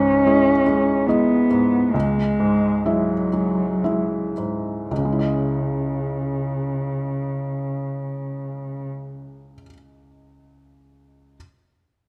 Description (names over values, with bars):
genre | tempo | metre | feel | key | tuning
neoclassical piano and strings | 55-75 BPM | 3/4 | rubato | C# minor | A4 = 440 Hz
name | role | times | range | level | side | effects
muted cello | second line | 0.0-8.9 s | C#3 to C#4 | -23 LUFS | equal | none
felt-muted upright piano | accompaniment | 0.0-11.4 s | C#2 to E5 | -25 LUFS | equal | none
room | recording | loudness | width
moderate recital hall reverb, RT60 1.5 s | none | -21 LUFS | mono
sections
0.0-4.9 A section; 4.9-8.1 B section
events
slowing down 0.0-4.9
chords
0.0 C#madd9; 1.9 Eadd9/C#; 4.9 C#madd9